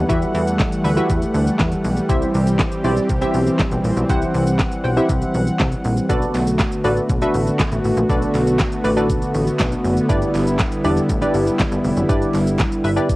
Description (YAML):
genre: dance-pop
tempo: 120 BPM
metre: 4/4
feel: straight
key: unclear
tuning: A4 = 440 Hz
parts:
  - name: warm analog pad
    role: sustained chords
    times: 0.0-13.2 s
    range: D3 to F#5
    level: -20 LUFS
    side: equal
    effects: chorus, sidechain pumping
  - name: plucky analog bass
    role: bass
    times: 0.0-13.0 s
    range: E1 to E2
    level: -22 LUFS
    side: equal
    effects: sidechain pumping
  - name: wavetable chord stab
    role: accompaniment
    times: 0.1-13.2 s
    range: C4 to G5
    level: -21 LUFS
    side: equal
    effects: none
  - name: pop drum kit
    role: drums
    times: 0.1-13.2 s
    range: handclaps, hi-hat, kick drum, shaker, snare drum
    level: -22 LUFS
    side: equal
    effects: cassette tape
  - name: group handclap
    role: percussion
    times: 6.3-12.7 s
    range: none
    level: -36 LUFS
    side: right 5 dB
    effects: none
room: digital ambience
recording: home recording on cassette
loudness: -16 LUFS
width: side -19 dB against mid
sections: 0.0-13.2 A section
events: none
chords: 0.0 Emadd9; 2.1 C; 6.1 Bm7; 10.1 G6